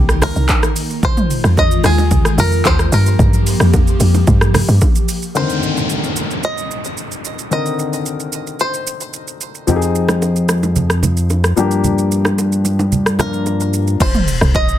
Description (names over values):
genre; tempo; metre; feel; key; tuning
amapiano; 111 BPM; 4/4; straight; C minor; A4 = 440 Hz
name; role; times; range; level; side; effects
bluegrass banjo; melody; 0.0-9.4, 13.2-14.8 s; G4 to Eb5; -22 LUFS; equal; ping-pong delay
airy breathy pad; sustained chords; 0.0-5.3 s; Eb3 to G4; -21 LUFS; left 2 dB; chorus, sidechain pumping
woody log drum bass; bass; 0.0-4.8, 14.4-14.8 s; C2 to G2; -14 LUFS; equal; none
deep house drum kit; drums; 0.1-14.8 s; crash cymbal, handclaps, hi-hat, kick drum, rim click, shaker, toms; -17 LUFS; equal; overdrive
bongos and congas; percussion; 0.2-4.9, 9.7-13.6 s; none; -22 LUFS; right 3 dB; none
warm baby grand piano; accompaniment; 5.3-14.0 s; D3 to Bb4; -20 LUFS; left 6 dB; none
downlifter and impact; sound effects; 5.4-9.7, 14.0-14.8 s; none; -24 LUFS; equal; none
fat analog bass; bass; 9.7-14.0 s; F2 to G2; -16 LUFS; equal; none
room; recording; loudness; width
little or no reverb; dense, heavily limited modern master; -13 LUFS; side -12 dB against mid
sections
0.0-5.4 A section; 5.4-14.0 B section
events
drop 0.0-5.4; impact 14.0-14.8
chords
0.0 Cm7; 1.0 Fm7; 2.9 Gm7; 5.4 Cm9; 9.7 Fm7; 11.6 Gm7; 14.0 Cm